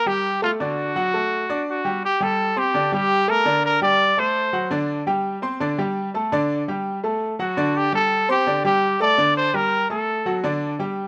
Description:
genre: latin.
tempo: 168 BPM.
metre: 4/4.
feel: straight.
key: G harmonic minor.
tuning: A4 = 439 Hz.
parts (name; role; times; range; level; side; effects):
clear trumpet; melody; 0.0-4.7, 7.4-10.4 s; F4 to D5; -22 LUFS; equal; slapback echo.
clear grand piano; accompaniment; 0.1-11.1 s; D3 to D6; -25 LUFS; equal; none.
room: little or no reverb.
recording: recorded outdoors, with no room sound.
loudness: -21 LUFS.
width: mono.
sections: 0.0-2.0 A section; 2.0-11.1 B section.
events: none.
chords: 0.0 Gsus2; 0.6 D; 2.0 Gsus2; 2.7 Gmadd9/D; 3.5 G5; 4.2 D7; 4.9 G5; 5.6 Dsus4; 6.3 G5; 7.0 D; 7.8 Gsus2; 8.5 Dsus4; 9.2 Gm; 9.9 D.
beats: 0.24 | 0.60 0.96 1.32 1.67 | 2.03 2.39 2.75 3.10 | 3.46 3.82 4.18 4.53 | 4.89 5.25 5.61 5.96 | 6.32 6.68 7.04 7.39 | 7.75 8.11 8.46 8.82 | 9.18 9.54 9.89 10.25 | 10.61 10.97.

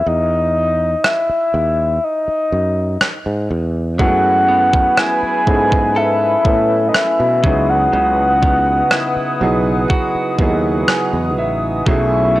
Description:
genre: contemporary R&B.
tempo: 61 BPM.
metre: 4/4.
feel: straight.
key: C# minor.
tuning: A4 = 443 Hz.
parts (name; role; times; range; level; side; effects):
soft octave-layered synth lead; melody; 0.0-12.4 s; D#5 to G#5; -16 LUFS; left 1 dB; chorus.
sustaining fretless electric bass; bass; 0.1-12.4 s; A1 to B2; -20 LUFS; equal; none.
clean 12-bit digital drum machine; drums; 1.0-12.1 s; kick drum, rim click; -17 LUFS; right 1 dB; none.
warm concert grand piano; accompaniment; 4.0-12.4 s; F#3 to G#5; -20 LUFS; right 2 dB; none.
hollow soft pad; sustained chords; 4.0-12.4 s; A3 to D#6; -24 LUFS; equal; chorus, sidechain pumping.
direct-recorded clean electric guitar; arpeggios; 4.0-12.4 s; B2 to A4; -24 LUFS; left 1 dB; tape echo.
room: light reverb.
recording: dry, gritty hardware recording.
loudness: -13 LUFS.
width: side -16 dB against mid.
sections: 0.0-12.4 A section.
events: break 0.0-4.0; grand piano fill 10.4-11.9.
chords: 0.0 Emaj7sus2; 4.0 F#m11; 7.4 C#m11; 11.9 B13sus4.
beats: | 0.06 1.04 2.03 3.01 | 4.00 4.98 5.96 6.95 | 7.93 8.91 9.90 10.88 | 11.86.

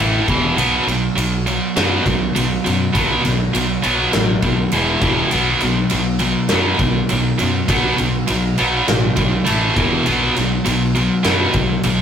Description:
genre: hard rock.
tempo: 101 BPM.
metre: 4/4.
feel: straight.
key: unclear.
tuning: A4 = 439 Hz.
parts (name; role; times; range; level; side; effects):
cranked stack guitar; riff; 0.0-12.0 s; E2 to B3; -23 LUFS; left 6 dB; overdrive.
scooped high-gain guitar; riff; 0.0-12.0 s; E2 to B3; -17 LUFS; right 2 dB; distortion.
modern bright picked electric bass; bass; 0.0-12.0 s; E1 to F#2; -24 LUFS; left 1 dB; none.
big rock drum kit; drums; 0.3-12.0 s; kick drum, ride cymbal, snare drum; -21 LUFS; equal; none.
room: moderate booth ambience, RT60 0.2 s.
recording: rough rehearsal-room recording.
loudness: -14 LUFS.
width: side -8 dB against mid.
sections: 0.0-12.0 A section.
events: none.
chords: 0.0 A5; 0.3 E5; 0.6 B5; 4.7 E5; 5.3 B5; 9.5 A5; 9.8 E5; 10.1 B5.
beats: | 0.58 1.17 1.77 2.36 | 2.95 3.54 4.13 4.73 | 5.32 5.91 6.51 7.10 | 7.69 8.29 8.88 9.47 | 10.07 10.66 11.26 11.85.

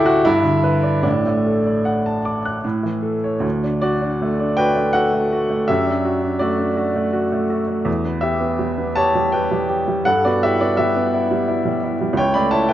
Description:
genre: classical, romantic character piece for solo piano.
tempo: 70-89 BPM.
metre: 3/4.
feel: rubato.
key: D major.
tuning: A4 = 440 Hz.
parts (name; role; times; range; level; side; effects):
clear baby grand piano; solo; 0.0-12.7 s; A1 to F#6; -16 LUFS; equal; none.
room: wet recital hall reverb, RT60 1.6 s.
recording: dark, warm production, nothing above 7.5 kHz.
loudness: -17 LUFS.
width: side -12 dB against mid.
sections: 0.0-3.4 A section; 3.4-12.7 B section.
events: none.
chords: 0.2 G; 1.0 D/A; 2.6 A; 3.4 D; 5.7 D/F#; 7.9 Em; 10.1 Em/G; 12.2 A7/C#.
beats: 0.25 | 1.04 1.87 2.64 | 3.44 4.21 4.95 | 5.69 6.41 7.13 | 7.87 8.60 9.33 | 10.06 10.78 11.48 | 12.17.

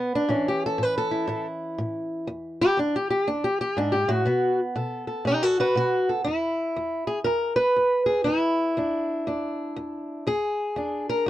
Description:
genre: acoustic country blues, solo or duo.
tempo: 120 BPM.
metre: 4/4.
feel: swing 64% on 8ths.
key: E mixolydian.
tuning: A4 = 440 Hz.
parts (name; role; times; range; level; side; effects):
fingerpicked old ladder-braced acoustic guitar; solo; 0.0-11.3 s; E2 to B4; -23 LUFS; equal; none.
room: light reverb.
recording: dry, close 1970s-style studio recording.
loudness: -22 LUFS.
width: side -14 dB against mid.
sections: 0.0-6.3 A section; 6.3-11.3 B section.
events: steel-string acoustic guitar solo 0.0-6.3.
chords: 0.3 A; 2.3 E; 4.3 B7(no3); 6.3 E7.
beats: | 0.28 0.78 1.28 1.78 | 2.27 2.77 3.27 3.77 | 4.27 4.77 5.26 5.76 | 6.26 6.76 7.26 7.76 | 8.27 8.77 9.27 9.77 | 10.27 10.77 11.27.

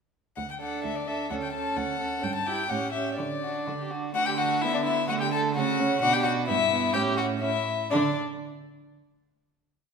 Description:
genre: quick classical-period movement for string quartet.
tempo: 127 BPM.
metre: 2/4.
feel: rubato.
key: D major.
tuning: A4 = 439 Hz.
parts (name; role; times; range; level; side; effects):
warm violin; melody; 0.4-8.2 s; D5 to A5; -28 LUFS; left 6 dB; none.
warm cello; bass; 0.4-8.2 s; D2 to D3; -32 LUFS; right 5 dB; none.
warm violin; second line; 0.6-8.2 s; D4 to A4; -31 LUFS; left 1 dB; none.
warm viola; accompaniment; 0.6-8.2 s; A3 to E4; -32 LUFS; right 5 dB; none.
room: wet recital hall reverb, RT60 1.4 s.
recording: recorded in a church or concert hall.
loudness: -24 LUFS.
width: side -6 dB against mid.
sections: 0.4-4.1 A section; 4.1-7.9 A section; 7.9-8.9 final note.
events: none.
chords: 0.4 D5; 1.3 F#m/D; 2.2 Em/G; 2.7 A7; 3.2 D; 4.1 D5; 5.1 F#m/D; 6.0 Bm; 6.5 Em/G; 6.9 A; 7.9 N.C..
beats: | 0.37 0.84 | 1.30 1.76 | 2.22 2.70 | 3.18 3.67 | 4.15 4.62 | 5.09 5.56 | 6.02 6.48 | 6.95 7.42 | 7.92.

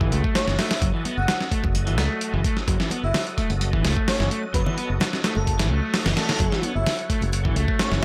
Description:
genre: breakbeat, breaks.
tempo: 129 BPM.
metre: 4/4.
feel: straight.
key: F# dorian.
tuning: A4 = 440 Hz.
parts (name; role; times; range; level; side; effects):
overdriven tonewheel organ; sustained chords; 0.0-8.0 s; F#3 to D#5; -36 LUFS; equal; chorus vibrato, slow rotary speaker, sidechain pumping.
crunchy overdriven guitar; riff; 0.0-8.0 s; E3 to B3; -31 LUFS; equal; delay.
modern bright fingered electric bass; bass; 0.0-8.0 s; F#1 to C#2; -26 LUFS; equal; none.
dusty soul sampler-style drum kit; drums; 0.0-8.0 s; hi-hat, kick drum, snare drum; -26 LUFS; equal; none.
airy dreamy lead; melody; 0.4-8.0 s; A4 to F#5; -33 LUFS; equal; chorus, old record sound, delay.
congas; percussion; 1.1-7.4 s; none; -35 LUFS; equal; none.
reverse cymbal; sound effects; 5.8-6.4 s; none; -38 LUFS; equal; none.
room: little or no reverb.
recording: vinyl crackle.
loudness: -23 LUFS.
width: mono.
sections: 0.0-8.0 A section.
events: none.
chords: 0.0 F#m.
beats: 0.35 | 0.82 1.28 1.75 2.21 | 2.68 3.14 3.61 4.08 | 4.54 5.00 5.47 5.93 | 6.40 6.87 7.33 7.80.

